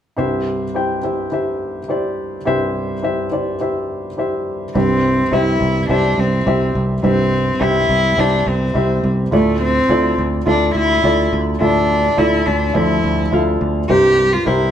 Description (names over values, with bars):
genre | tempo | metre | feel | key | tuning
piano-driven pop | 105 BPM | 4/4 | straight | unclear | A4 = 437 Hz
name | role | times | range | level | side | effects
dark baby grand piano | accompaniment | 0.2-14.7 s | C2 to G5 | -19 LUFS | left 1 dB | none
warm cello | melody | 4.8-14.7 s | A3 to G4 | -17 LUFS | equal | none
overdriven picked electric bass | bass | 4.8-14.7 s | C2 to D2 | -19 LUFS | right 1 dB | none
room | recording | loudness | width
wet stone room reverb, RT60 1.1 s | band playing live in one room | -14 LUFS | side -9 dB against mid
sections
0.2-4.8 A section; 4.8-14.7 B section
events
none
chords
0.2 C; 9.3 Dmadd9; 13.9 C7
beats
| 0.17 0.75 1.32 1.89 | 2.46 3.04 3.61 4.18 | 4.75 5.32 5.89 6.47 | 7.04 7.61 8.18 8.75 | 9.32 9.89 10.47 11.04 | 11.61 12.18 12.75 13.32 | 13.89 14.47